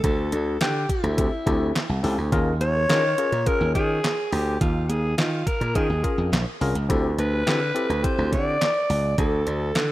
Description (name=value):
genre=early-eighties boogie funk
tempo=105 BPM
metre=4/4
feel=straight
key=unclear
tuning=A4 = 442 Hz
part: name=growling alto saxophone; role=melody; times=0.0-9.9 s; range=E4 to D5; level=-25 LUFS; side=equal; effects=none
part: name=slap bass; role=bass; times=0.0-9.9 s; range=Bb1 to Eb3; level=-24 LUFS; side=equal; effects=none
part: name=detuned 8-bit digital drum machine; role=drums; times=0.0-9.9 s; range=handclaps, hi-hat, kick drum, snare drum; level=-26 LUFS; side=equal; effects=overdrive
part: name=mellow tine electric piano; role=accompaniment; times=1.0-8.6 s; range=C4 to Bb4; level=-28 LUFS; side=left 2 dB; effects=none
room=light reverb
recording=rough home demo mix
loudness=-20 LUFS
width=side -16 dB against mid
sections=0.0-9.9 A section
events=none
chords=0.0 D9sus4; 2.3 Eb9sus4; 6.9 D9sus4